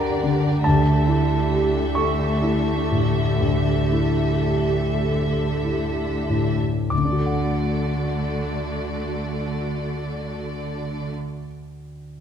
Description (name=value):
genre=classical, romantic movement for piano and orchestra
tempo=29-49 BPM (dotted quarters)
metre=12/8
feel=rubato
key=D major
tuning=A4 = 439 Hz
part: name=warm concert grand piano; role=melody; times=0.0-12.2 s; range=D2 to D6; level=-22 LUFS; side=equal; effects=none
part: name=warm studio violin section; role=second line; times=0.0-11.1 s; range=A4 to E5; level=-31 LUFS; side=left 3 dB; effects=none
part: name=dark studio viola section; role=accompaniment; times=0.0-11.1 s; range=A3 to G4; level=-28 LUFS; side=right 2 dB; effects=none
part: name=rich studio cello section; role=bass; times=0.0-11.1 s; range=D3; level=-29 LUFS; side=right 2 dB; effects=none
room=wet scoring stage reverb, RT60 1.6 s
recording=minimal, uncompressed stereo recording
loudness=-20 LUFS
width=side -8 dB against mid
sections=0.0-6.9 A section; 6.9-12.2 B section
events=slowing down 0.0-6.9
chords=0.0 Gm/D; 0.6 A7/D; 6.9 D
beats=| 0.64 1.96 3.40 5.04 | 6.91 8.51 10.13 11.75